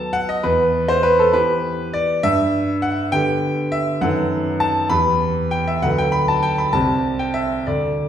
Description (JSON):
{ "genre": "classical-period piano sonatina", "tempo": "67 BPM (dotted quarters)", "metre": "6/8", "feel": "straight", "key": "G major", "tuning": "A4 = 440 Hz", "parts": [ { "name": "clear concert grand piano", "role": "solo", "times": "0.0-8.1 s", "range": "C2 to B5", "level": "-16 LUFS", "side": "equal", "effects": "none" } ], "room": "wet recital hall reverb, RT60 1.6 s", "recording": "recorded in a church or concert hall", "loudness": "-16 LUFS", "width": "side -9 dB against mid", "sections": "0.0-8.1 A section", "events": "none", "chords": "0.4 Em; 2.2 G; 4.0 B7/F#; 4.9 Em; 5.8 Bm/D; 6.7 C5" }